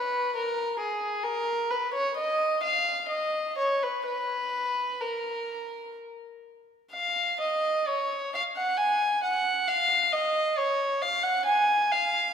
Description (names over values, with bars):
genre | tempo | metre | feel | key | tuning
classical, baroque-style suite movement for unaccompanied violin | 64 BPM | 3/4 | uneven beats, rubato | B major | A4 = 440 Hz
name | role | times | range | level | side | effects
dark violin | solo | 0.0-12.3 s | G#4 to G#5 | -25 LUFS | equal | none
room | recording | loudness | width
wet scoring stage reverb, RT60 2.1 s | minimal, uncompressed stereo recording | -25 LUFS | side -8 dB against mid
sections
0.0-12.3 A section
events
none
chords
none